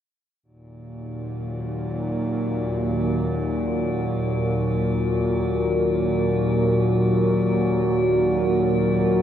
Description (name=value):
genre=dark ambient drone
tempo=free time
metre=none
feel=none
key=Eb minor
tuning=A4 = 439 Hz
part: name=deep dark ambient pad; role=sustained chords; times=1.2-9.2 s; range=Eb4 to Db5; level=-25 LUFS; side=right 1 dB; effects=chorus, built-in reverb
part: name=bowed-like drone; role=drone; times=0.8-9.2 s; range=Eb2 to Bb2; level=-24 LUFS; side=equal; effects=built-in reverb
part: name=metallic inharmonic drone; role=texture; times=1.3-9.2 s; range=Gb3 to Gb4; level=-26 LUFS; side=left 1 dB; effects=chorus, built-in reverb
room=wet cathedral reverb, RT60 5.9 s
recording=none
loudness=-20 LUFS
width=side -10 dB against mid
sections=0.4-9.2 A section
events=none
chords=0.4 Ebm